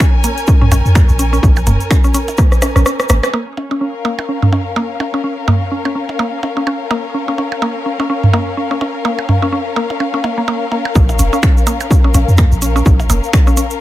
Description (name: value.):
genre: minimal techno.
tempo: 126 BPM.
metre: 4/4.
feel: swing 58% on 16ths.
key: Bb minor.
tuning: A4 = 440 Hz.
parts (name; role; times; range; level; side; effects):
mallet-like synth pluck; riff; 0.0-13.6 s; Bb3 to Db4; -20 LUFS; equal; chorus, sidechain pumping, tape echo.
electronic kick drum; drums; 0.0-2.5, 11.0-13.4 s; none; -11 LUFS; equal; overdrive.
house drum kit; drums; 0.0-3.3, 11.2-13.8 s; finger snaps, hi-hat, rim click; -19 LUFS; equal; overdrive, low-pass filter on hats, low-pass filter on snare, low-pass filter on room.
tube shaker; percussion; 0.0-3.3, 11.0-13.8 s; none; -26 LUFS; right 3 dB; none.
warm symphonic string section; texture; 0.0-13.8 s; Db4 to Ab5; -21 LUFS; left 4 dB; sidechain pumping.
electronic toms and percussion blips; percussion; 0.6-13.6 s; none; -16 LUFS; right 2 dB; none.
punchy sub bass; bass; 0.7-3.2, 11.0-13.2 s; F1 to F2; -13 LUFS; equal; sidechain pumping.
room: light reverb.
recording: none.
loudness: -12 LUFS.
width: side -14 dB against mid.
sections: 0.0-3.3 A section; 3.3-11.0 B section; 11.0-13.8 C section.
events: drum fill 2.4-3.3; break 2.9-3.3; band accent 3.2; filter sweep on synth arpeggio sound 3.3-11.0; drop 11.0-13.8.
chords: 0.0 Bbm.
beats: 0.00 0.48 0.95 | 1.43 1.91 2.38 2.86 | 3.33 3.81 4.29 4.76 | 5.24 5.71 6.19 6.67 | 7.14 7.62 8.10 8.57 | 9.05 9.53 10.00 10.48 | 10.95 11.43 11.91 12.38 | 12.86 13.33.